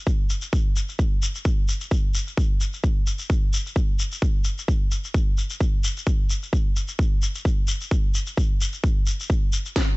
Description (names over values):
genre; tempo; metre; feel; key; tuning
house; 130 BPM; 4/4; swing 55% on 16ths; none; none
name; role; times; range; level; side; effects
electronic kick drum; drums; 0.1-9.9 s; none; -21 LUFS; equal; none
shekere; percussion; 0.1-9.7 s; none; -31 LUFS; left 3 dB; none
garage drum kit; drums; 9.8-9.9 s; hi-hat, snare drum; -25 LUFS; left 1 dB; high-pass filter on snare, low-pass filter on snare, high-pass filter on hats, low-pass filter on hats
room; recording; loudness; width
little or no reverb; nothing above 8.0 kHz; -21 LUFS; side -24 dB against mid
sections
0.0-9.8 A section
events
drum fill 9.8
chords
none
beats
0.07 | 0.53 0.99 1.45 1.91 | 2.37 2.84 3.30 3.76 | 4.22 4.68 5.14 5.61 | 6.07 6.53 6.99 7.45 | 7.91 8.37 8.84 9.30 | 9.76